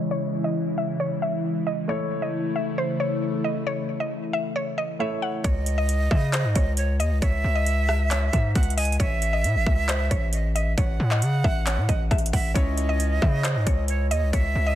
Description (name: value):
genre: hip hop, trap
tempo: 135 BPM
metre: 4/4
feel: half-time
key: C# minor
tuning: A4 = 440 Hz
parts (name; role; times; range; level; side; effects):
- mallet-like synth pluck; melody; 0.0-14.8 s; B#4 to F#5; -30 LUFS; left 1 dB; chorus, low-pass filter, digital delay
- clear concert grand piano; accompaniment; 0.0-5.5, 12.5-14.8 s; A3 to C#5; -33 LUFS; right 1 dB; low-pass filter
- airy breathy pad; sustained chords; 0.0-5.4 s; C#3 to E4; -27 LUFS; left 1 dB; chorus, low-pass filter
- breathy bright jazz flute; second line; 5.4-14.8 s; C#5 to G#5; -30 LUFS; right 4 dB; digital delay
- distorted 808-style bass; bass; 5.4-14.8 s; A1 to C#3; -23 LUFS; equal; distortion
- trap drum kit; drums; 5.4-14.4 s; handclaps, hi-hat, kick drum, rim click; -25 LUFS; equal; overdrive
room: light reverb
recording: dense, heavily limited modern master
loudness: -21 LUFS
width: side -12 dB against mid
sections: 0.0-5.4 A section; 5.4-14.8 B section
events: filter sweep 0.0-5.4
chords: 0.0 C#m; 1.9 A; 5.4 C#madd9; 9.0 A; 12.6 C#madd9